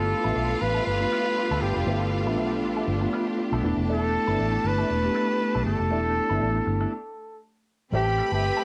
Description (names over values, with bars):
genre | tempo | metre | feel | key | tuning
disco | 119 BPM | 4/4 | swing 56% on 16ths | unclear | A4 = 439 Hz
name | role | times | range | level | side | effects
clear flugelhorn | melody | 0.0-8.6 s | G4 to B4 | -29 LUFS | equal | none
clear studio string section | second line | 0.0-8.6 s | F4 to B5 | -38 LUFS | equal | cassette tape
clean electric guitar | accompaniment | 0.0-8.6 s | F3 to B4 | -37 LUFS | equal | wah, cassette tape
mellow tine electric piano | accompaniment | 0.0-6.9 s | A3 to G4 | -31 LUFS | equal | cassette tape
bright studio string section | sustained chords | 0.0-8.6 s | G3 to B4 | -35 LUFS | equal | cassette tape
vintage muted fingered electric bass | bass | 0.0-8.5 s | E1 to D2 | -30 LUFS | equal | none
room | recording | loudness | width
light reverb | home recording on cassette | -25 LUFS | mono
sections
0.0-7.9 A section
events
stop 6.9-7.9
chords
0.0 G13; 3.6 E7sus4; 7.9 Am7